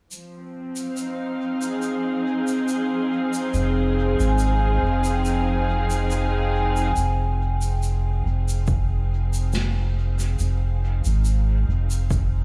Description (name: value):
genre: ambient dub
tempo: 70 BPM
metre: 4/4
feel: swing 53% on 16ths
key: F minor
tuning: A4 = 440 Hz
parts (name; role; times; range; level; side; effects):
- muted studio string section; sustained chords; 0.1-12.4 s; F3 to F5; -32 LUFS; equal; none
- shaker and snare drum; drums; 0.1-12.3 s; none; -38 LUFS; equal; dub echo
- drifting glass-harmonics texture; texture; 0.5-7.0 s; C4 to C5; -29 LUFS; equal; chorus, built-in reverb
- soft dub sub bass; bass; 3.5-12.4 s; F1 to Ab1; -24 LUFS; equal; tube saturation
- vibraphone with medium mallets; arpeggios; 4.3-7.0 s; G5 to Ab5; -33 LUFS; equal; dub echo
- electronic kick drum; drums; 8.7-12.3 s; none; -27 LUFS; equal; none
room: light reverb, small room reverb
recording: studio reverb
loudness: -23 LUFS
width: mono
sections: 0.1-7.0 A section; 7.0-12.4 B section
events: fade-in on string section 7.0-12.4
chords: 0.1 Fm7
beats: | 0.11 0.97 1.82 2.68 | 3.54 4.39 5.25 6.11 | 6.97 7.82 8.68 9.54 | 10.39 11.25 12.11